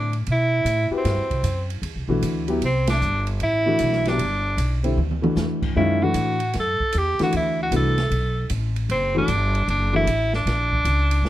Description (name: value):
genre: modal jazz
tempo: 153 BPM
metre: 4/4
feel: swing 66% on 8ths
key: C lydian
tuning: A4 = 440 Hz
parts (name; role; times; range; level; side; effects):
- bright tenor saxophone; melody; 0.0-11.3 s; C4 to A4; -23 LUFS; right 1 dB; none
- warm upright piano; accompaniment; 0.0-10.1 s; D3 to B4; -24 LUFS; left 2 dB; none
- upright bass; bass; 0.0-11.3 s; F#1 to B2; -23 LUFS; equal; none
- open jazz drum kit; drums; 0.1-11.3 s; crash cymbal, hi-hat, kick drum, ride cymbal, snare drum, toms; -31 LUFS; right 2 dB; none
room: little or no reverb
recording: close, detailed microphones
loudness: -19 LUFS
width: side -14 dB against mid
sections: 0.0-11.3 A section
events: band accent 2.8; drum fill 5.0-5.4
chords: 0.0 Cmaj9; 5.8 Bm7 (rootless); 10.5 Bb